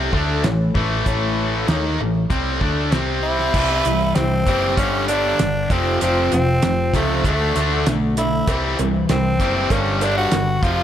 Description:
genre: classic rock.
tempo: 97 BPM.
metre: 4/4.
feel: straight.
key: unclear.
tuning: A4 = 440 Hz.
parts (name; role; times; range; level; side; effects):
picked twelve-string acoustic guitar; accompaniment; 0.0-10.8 s; F2 to A4; -30 LUFS; left 3 dB; none.
overdriven electric guitar; riff; 0.0-10.8 s; F2 to D#4; -24 LUFS; right 10 dB; none.
tight distorted guitar; riff; 0.0-10.8 s; F2 to D#4; -23 LUFS; left 9 dB; distortion.
hollow-body short-scale fingered electric bass; bass; 0.0-10.8 s; F1 to D#2; -24 LUFS; equal; none.
damped 70s drum kit; drums; 0.1-10.8 s; crash cymbal, hi-hat, kick drum, snare drum; -23 LUFS; right 1 dB; none.
growling tenor saxophone; melody; 3.2-10.8 s; A3 to F#4; -22 LUFS; equal; none.
cowbell; percussion; 8.5-10.5 s; none; -32 LUFS; right 5 dB; none.
room: light reverb, studio reverb.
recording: none.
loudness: -16 LUFS.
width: side -10 dB against mid.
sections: 0.0-3.5 A section; 3.5-10.8 B section.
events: none.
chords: 0.0 A; 2.9 C5; 3.5 C; 4.8 G; 5.7 F; 7.3 D; 8.5 C; 9.7 G.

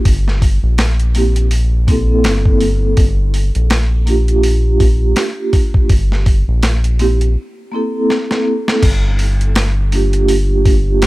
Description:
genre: trip hop.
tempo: 82 BPM.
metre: 4/4.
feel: swing 58% on 16ths.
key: G dorian.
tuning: A4 = 435 Hz.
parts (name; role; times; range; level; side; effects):
vibraphone with soft mallets; accompaniment; 0.0-11.1 s; Bb3 to A4; -18 LUFS; right 1 dB; tremolo, tape echo.
round analog bass; bass; 0.1-11.1 s; G1 to Bb1; -14 LUFS; equal; none.
dusty soul sampler-style drum kit; drums; 0.1-11.1 s; crash cymbal, hi-hat, kick drum, snare drum; -15 LUFS; equal; overdrive, small room ambience.
room: little or no reverb.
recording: none.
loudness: -12 LUFS.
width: side -18 dB against mid.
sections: 0.0-8.8 A section; 8.8-11.1 B section.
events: break 7.4-8.8; drum fill 8.1-8.8.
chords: 0.1 C7/G; 3.0 Gm7; 5.9 C7/G; 8.8 Gm7.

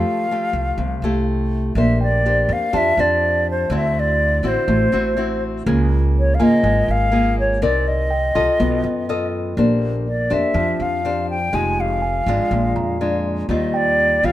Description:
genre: bossa nova.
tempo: 123 BPM.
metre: 4/4.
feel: straight.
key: unclear.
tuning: A4 = 440 Hz.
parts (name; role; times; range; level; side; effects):
hollow concert flute; melody; 0.0-14.3 s; C5 to Ab5; -20 LUFS; equal; none.
mellow tine electric piano; accompaniment; 0.0-14.3 s; G5 to C6; -31 LUFS; right 6 dB; none.
nylon-string guitar; accompaniment; 0.0-14.3 s; Bb2 to Eb5; -21 LUFS; left 1 dB; none.
upright bass; bass; 0.0-14.3 s; F1 to F#2; -22 LUFS; equal; none.
room: light reverb.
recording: minimal, uncompressed stereo recording.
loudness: -16 LUFS.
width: side -14 dB against mid.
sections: 0.0-1.8 A section; 1.8-14.3 B section.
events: none.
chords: 0.0 Fmaj9; 1.8 Bb69; 3.7 D9; 5.7 Db6; 7.6 Cm9; 8.6 B7#11; 9.6 Bb69; 11.5 Fm9; 12.5 Bb7; 13.5 Eb69.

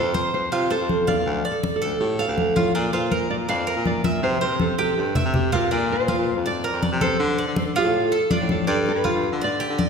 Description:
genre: latin, Cuban son and guajira.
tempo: 162 BPM.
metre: 4/4.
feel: straight.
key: unclear.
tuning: A4 = 440 Hz.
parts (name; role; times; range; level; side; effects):
nylon-string guitar; melody; 0.0-9.8 s; F4 to F5; -25 LUFS; right 2 dB; none.
Cuban tres; arpeggios; 0.0-9.9 s; D4 to F5; -25 LUFS; right 1 dB; none.
breathy baritone saxophone; bass; 0.0-9.9 s; D2 to D3; -26 LUFS; left 2 dB; none.
congas; percussion; 0.1-9.9 s; none; -26 LUFS; left 2 dB; none.
room: wet concert hall reverb, RT60 1.8 s.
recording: recorded in a church or concert hall.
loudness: -20 LUFS.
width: side -6 dB against mid.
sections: 0.0-5.7 A section; 5.7-9.9 B section.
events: drum fill 4.6-5.7.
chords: 0.0 F; 1.3 Dm; 2.7 Bb; 4.2 C; 5.7 Bb; 7.2 Dm7; 8.7 G7.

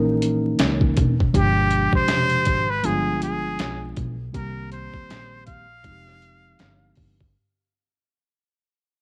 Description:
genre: hip hop, jazz-hop.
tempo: 80 BPM.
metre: 4/4.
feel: swing 58% on 16ths.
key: F dorian.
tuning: A4 = 437 Hz.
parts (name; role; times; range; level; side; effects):
mellow tine electric piano; accompaniment; 0.0-7.2 s; B2 to Bb4; -27 LUFS; equal; cassette tape.
upright bass; bass; 0.0-7.3 s; Fb1 to Db2; -28 LUFS; equal; none.
dusty soul sampler-style drum kit; drums; 0.2-7.3 s; hi-hat, kick drum, snare drum; -25 LUFS; equal; overdrive, cassette tape.
trumpet with straight mute; melody; 1.4-6.9 s; G4 to F5; -27 LUFS; equal; cassette tape.
room: little or no reverb.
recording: home recording on cassette, vinyl crackle.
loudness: -21 LUFS.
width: mono.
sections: 0.0-7.3 A section.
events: fade-out 0.0-7.3.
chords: 0.0 Eb7(no3); 1.3 G7b9; 4.3 Cm7; 5.8 Fm9.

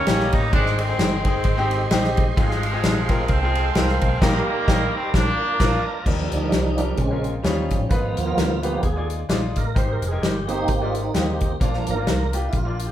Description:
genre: uptempo gospel.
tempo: 130 BPM.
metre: 4/4.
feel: swing 57% on 8ths.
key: Eb major.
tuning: A4 = 440 Hz.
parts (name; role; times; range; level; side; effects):
bright horn section; melody; 0.0-6.0 s; C3 to Eb4; -24 LUFS; right 1 dB; none.
bright grand piano; accompaniment; 0.0-12.9 s; Ab2 to Eb5; -28 LUFS; left 2 dB; none.
tonewheel organ; sustained chords; 0.0-12.9 s; Db3 to C6; -27 LUFS; right 2 dB; slow rotary speaker, overdrive, chorus vibrato.
vintage muted fingered electric bass; bass; 0.1-12.9 s; F1 to Eb2; -25 LUFS; equal; none.
natural country drum kit; drums; 0.1-12.9 s; crash cymbal, hi-hat, kick drum, ride cymbal, snare drum; -22 LUFS; equal; none.
room: moderate large studio reverb, RT60 0.9 s.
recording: band playing live in one room.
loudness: -19 LUFS.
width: side -11 dB against mid.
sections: 0.0-6.1 A section; 6.1-12.9 B section.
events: band accent 4.2-6.1; tonewheel organ solo 6.1-12.9.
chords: 0.0 Eb7; 0.5 Ab; 2.4 Fm/Ab; 4.2 Eb/Bb; 5.1 Bb; 6.1 Ebmaj7; 7.0 Bbm7; 7.5 Eb9; 7.9 Abm6; 9.8 Abmaj7; 11.6 Bb.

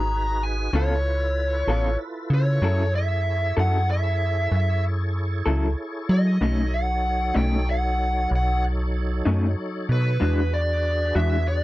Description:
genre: blues.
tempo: 63 BPM (dotted quarters).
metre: 12/8.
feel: straight.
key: unclear.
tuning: A4 = 441 Hz.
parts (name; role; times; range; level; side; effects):
dark smooth lead guitar; melody; 0.0-11.6 s; B4 to A#5; -26 LUFS; equal; overdrive.
tonewheel organ; sustained chords; 0.0-11.6 s; F#3 to C#5; -32 LUFS; right 1 dB; slow rotary speaker, overdrive, chorus vibrato.
metallic FM bass; bass; 0.0-11.6 s; G#1 to F#3; -22 LUFS; equal; none.
electric guitar through a small old amp; accompaniment; 0.7-11.4 s; B2 to A4; -25 LUFS; left 2 dB; tremolo.
room: little or no reverb.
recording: dry, close 1970s-style studio recording.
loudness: -21 LUFS.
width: side -17 dB against mid.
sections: 0.0-11.6 A section.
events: none.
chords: 0.0 G#m7; 0.7 C#7alt; 2.6 F#m7; 6.4 B9; 10.2 E9.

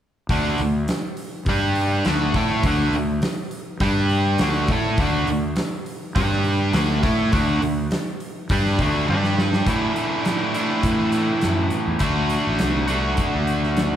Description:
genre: classic rock.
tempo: 102 BPM.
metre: 4/4.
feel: straight.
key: unclear.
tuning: A4 = 442 Hz.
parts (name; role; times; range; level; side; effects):
cranked stack guitar; riff; 0.3-14.0 s; A2 to A4; -21 LUFS; equal; overdrive, spring reverb.
fuzz fingered electric bass; bass; 0.3-13.9 s; A1 to A2; -24 LUFS; equal; overdrive.
big rock drum kit; drums; 0.3-13.9 s; hi-hat, kick drum, snare drum, toms; -25 LUFS; equal; none.
room: light reverb.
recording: band playing live in one room.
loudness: -19 LUFS.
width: side -10 dB against mid.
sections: 0.3-9.7 A section; 9.7-14.0 B section.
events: drum fill 9.1-9.7.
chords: 0.3 D5; 1.5 G5; 2.1 D5; 3.8 G5; 4.4 D5; 6.2 G5; 6.7 D5; 9.1 G5; 9.7 Asus4; 12.0 D.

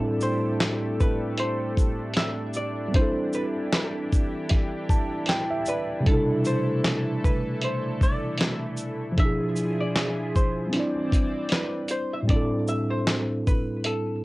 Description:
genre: lo-fi hip hop.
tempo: 77 BPM.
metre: 4/4.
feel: swing 57% on 16ths.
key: unclear.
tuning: A4 = 441 Hz.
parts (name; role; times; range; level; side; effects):
archtop guitar, miked and amplified; melody; 0.0-14.2 s; A4 to E5; -32 LUFS; equal; low-pass filter, cassette tape, tape echo.
mellow tine electric piano; accompaniment; 0.0-14.2 s; A2 to A5; -27 LUFS; equal; medium stereo tremolo, low-pass filter, cassette tape.
lush unison pad; sustained chords; 0.0-12.3 s; E3 to D5; -34 LUFS; equal; chorus, low-pass filter, cassette tape.
dusty soul sampler-style drum kit; drums; 0.2-14.1 s; handclaps, hi-hat, kick drum, shaker, snare drum; -24 LUFS; equal; cassette tape.
room: light reverb.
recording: home recording on cassette.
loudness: -23 LUFS.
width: side -20 dB against mid.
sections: 0.0-12.3 A section; 12.3-14.2 B section.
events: none.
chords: 0.0 Am7; 2.9 D9sus4; 6.1 Cmaj13; 9.2 E7b9; 10.7 Cadd9.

